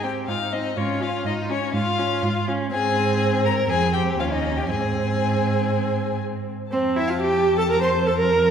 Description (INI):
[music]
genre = quick classical-period movement for string quartet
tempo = 123 BPM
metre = 4/4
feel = straight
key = Ab major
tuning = A4 = 441 Hz
[part]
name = rich violin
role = melody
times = 0.0-8.5 s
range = Db5 to Bb5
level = -28 LUFS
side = left 7 dB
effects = none
[part]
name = clear violin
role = second line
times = 0.0-8.5 s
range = Db4 to C6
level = -28 LUFS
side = left 2 dB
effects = none
[part]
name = rich viola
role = accompaniment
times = 0.0-8.5 s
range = C4 to C5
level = -23 LUFS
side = right 2 dB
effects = none
[part]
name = warm cello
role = bass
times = 0.0-8.5 s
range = Eb2 to Ab2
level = -26 LUFS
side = right 3 dB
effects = none
[sound]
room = wet concert hall reverb, RT60 2.4 s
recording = heard from further back in the room, faint mains hum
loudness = -20 LUFS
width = side -8 dB against mid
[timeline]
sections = 0.0-6.7 A section; 6.7-8.5 B section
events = none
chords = 0.0 Ab; 0.8 Db/Ab; 2.7 Ab; 3.7 Fm; 4.2 Eb9; 4.7 Ab; 6.7 F